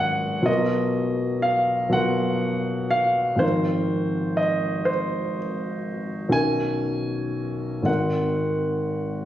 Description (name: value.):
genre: classical, impressionist solo piano.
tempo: 38-42 BPM (dotted quarters).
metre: 6/8.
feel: rubato.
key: unclear.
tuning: A4 = 439 Hz.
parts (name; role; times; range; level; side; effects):
warm concert grand piano; solo; 0.0-9.2 s; Ab1 to Ab5; -21 LUFS; equal; none.
room: moderate recital hall reverb, RT60 1.8 s.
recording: recorded on a phone in the room, studio reverb, compression.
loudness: -21 LUFS.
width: side -12 dB against mid.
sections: 0.0-9.2 A section.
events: none.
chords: 0.5 Bmaj7#11; 3.4 Ab69; 6.4 Bmaj9; 7.9 Ab9.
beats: | 0.48 1.96 | 3.43 4.89 | 6.36 7.88.